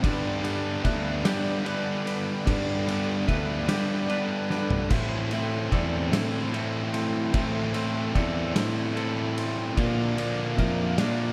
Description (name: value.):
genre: post-rock.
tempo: 49 BPM (dotted quarters).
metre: 6/8.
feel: straight.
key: A minor.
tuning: A4 = 442 Hz.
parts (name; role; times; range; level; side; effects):
rich chamber string section; sustained chords; 0.0-11.3 s; F4 to D6; -43 LUFS; equal; none.
electric guitar through a small old amp; arpeggios; 0.0-11.3 s; A4 to E5; -40 LUFS; equal; spring reverb, tape echo.
twangy electric guitar; arpeggios; 0.0-11.3 s; A2 to B4; -39 LUFS; equal; tape echo.
biting overdriven guitar; riff; 0.0-11.3 s; G2 to F4; -33 LUFS; equal; spring reverb.
fuzz guitar; riff; 0.0-11.3 s; G2 to E4; -35 LUFS; equal; distortion.
fuzz fingered electric bass; bass; 0.0-11.3 s; D2 to G3; -32 LUFS; equal; overdrive.
oversized low-tuned drum kit; drums; 0.0-11.2 s; crash cymbal, kick drum, ride cymbal, snare drum, toms; -32 LUFS; equal; none.
room: light reverb, small room reverb.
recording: none.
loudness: -27 LUFS.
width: mono.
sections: 0.0-11.3 A section.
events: drum fill 4.5-4.9.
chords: 0.0 Gadd9; 4.9 Am7; 9.8 Bb.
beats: | 0.03 1.25 | 2.47 3.69 | 4.91 6.12 | 7.34 8.55 | 9.77 10.98.